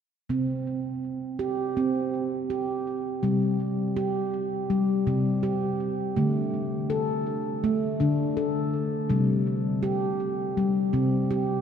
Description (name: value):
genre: world meditative, meditative tuned percussion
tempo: 82 BPM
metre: 4/4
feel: swing 54% on 16ths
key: unclear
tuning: A4 = 438 Hz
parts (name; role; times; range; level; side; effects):
- handpan; solo; 0.3-11.6 s; C3 to A4; -24 LUFS; equal; tape echo
room: wet cathedral reverb, RT60 5.1 s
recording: in a vast, echoing space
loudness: -24 LUFS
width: side -8 dB against mid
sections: 0.3-3.2 A section; 3.2-11.6 B section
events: none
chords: 0.3 C5; 6.2 D5; 9.1 C5